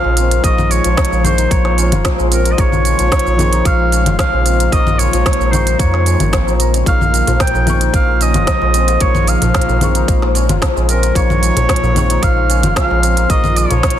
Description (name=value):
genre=organic downtempo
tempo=112 BPM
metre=4/4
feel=straight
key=Bb minor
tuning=A4 = 440 Hz
part: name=bright clarinet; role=melody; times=0.0-14.0 s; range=Bb4 to G5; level=-18 LUFS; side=right 1 dB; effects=digital delay
part: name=felt-muted upright piano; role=accompaniment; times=0.0-14.0 s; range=F3 to Db6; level=-24 LUFS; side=left 4 dB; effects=sidechain pumping, digital delay
part: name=ethereal airy pad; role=sustained chords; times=0.0-14.0 s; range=Db3 to F4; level=-25 LUFS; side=equal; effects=ensemble chorus, built-in reverb, sidechain pumping
part: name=santur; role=arpeggios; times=0.0-14.0 s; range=F3 to Bb4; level=-21 LUFS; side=left 5 dB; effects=digital delay
part: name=warm sub bass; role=bass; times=0.0-14.0 s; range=F1 to F2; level=-15 LUFS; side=right 1 dB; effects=none
part: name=organic electronic drum kit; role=drums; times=0.2-14.0 s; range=congas, hi-hat, shaker, snare drum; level=-19 LUFS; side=left 1 dB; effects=none
part: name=electronic kick drum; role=drums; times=0.4-13.9 s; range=none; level=-16 LUFS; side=right 1 dB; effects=none
part: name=darbuka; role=percussion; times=7.3-14.0 s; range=none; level=-24 LUFS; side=left 1 dB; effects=none
room=small room ambience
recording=dense, heavily limited modern master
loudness=-11 LUFS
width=side -11 dB against mid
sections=0.0-14.0 A section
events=none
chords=0.0 Bbm7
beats=| 0.44 0.97 1.51 2.05 | 2.58 3.12 3.65 4.19 | 4.72 5.26 5.80 6.33 | 6.87 7.40 7.94 8.47 | 9.01 9.55 10.08 10.62 | 11.15 11.69 12.22 12.76 | 13.30 13.83